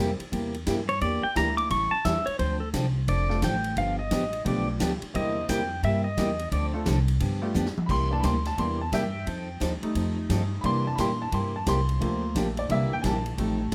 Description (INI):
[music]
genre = country, western swing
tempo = 175 BPM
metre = 4/4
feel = swing 64% on 8ths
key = C mixolydian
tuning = A4 = 440 Hz
[part]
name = clear upright piano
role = accompaniment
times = 0.0-13.7 s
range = D3 to C6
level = -33 LUFS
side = equal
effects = none
[part]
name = picked steel-string acoustic guitar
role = accompaniment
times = 0.0-13.7 s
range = C3 to A4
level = -33 LUFS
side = equal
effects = none
[part]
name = upright bass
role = bass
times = 0.0-13.7 s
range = F1 to C3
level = -31 LUFS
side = equal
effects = none
[part]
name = swinging big-band drum kit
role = drums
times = 0.2-13.7 s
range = crash cymbal, hi-hat, kick drum, ride cymbal, snare drum, toms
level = -37 LUFS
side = equal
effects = none
[part]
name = pedal steel guitar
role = melody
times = 0.9-6.7 s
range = A4 to D6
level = -30 LUFS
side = equal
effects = none
[sound]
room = moderate studio reverb, RT60 0.5 s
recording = none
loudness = -27 LUFS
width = mono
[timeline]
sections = 0.0-7.9 A section; 7.9-13.7 A section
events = pedal steel guitar solo 0.0-7.9; drum fill 7.5-7.9; upright piano solo 7.9-13.7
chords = 0.0 C9; 1.0 Em7b5; 1.7 A7; 2.4 Dm7; 3.8 G9; 5.1 C9; 6.5 Dm7; 7.2 G9; 7.9 C9; 9.3 F9; 10.6 C9; 12.0 Gm7; 12.7 C9